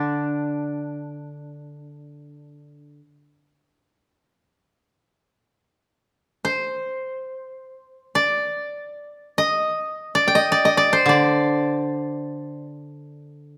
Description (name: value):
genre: japanese traditional, Japanese chamber music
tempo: free time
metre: none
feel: none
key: unclear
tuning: A4 = 440 Hz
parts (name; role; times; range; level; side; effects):
- koto; melody; 0.0-13.6 s; D4 to G5; -23 LUFS; equal; none
- koto; accompaniment; 0.0-3.0, 11.1-13.6 s; D3; -28 LUFS; equal; none
room: moderate recital hall reverb, RT60 1.4 s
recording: none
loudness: -22 LUFS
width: mono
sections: 0.0-5.3 A section; 5.3-13.6 A section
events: none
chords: none